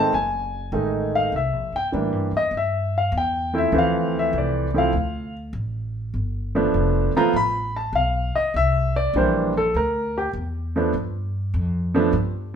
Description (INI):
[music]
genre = jazz piano trio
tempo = 100 BPM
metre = 4/4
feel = swing 69% on 8ths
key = C mixolydian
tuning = A4 = 440 Hz
[part]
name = warm concert grand piano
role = melody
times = 0.0-12.1 s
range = D#3 to B5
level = -21 LUFS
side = equal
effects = none
[part]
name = upright bass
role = bass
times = 0.1-12.6 s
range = F1 to A2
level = -26 LUFS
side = equal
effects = none
[sound]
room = moderate large studio reverb, RT60 0.9 s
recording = band playing live in one room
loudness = -20 LUFS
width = side -8 dB against mid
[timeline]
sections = 0.0-12.6 A section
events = grand piano solo 0.0-12.6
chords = 0.0 F#m6; 1.3 C (rootless); 3.7 Dm7; 6.1 G7; 8.5 C7; 10.9 G7(no3)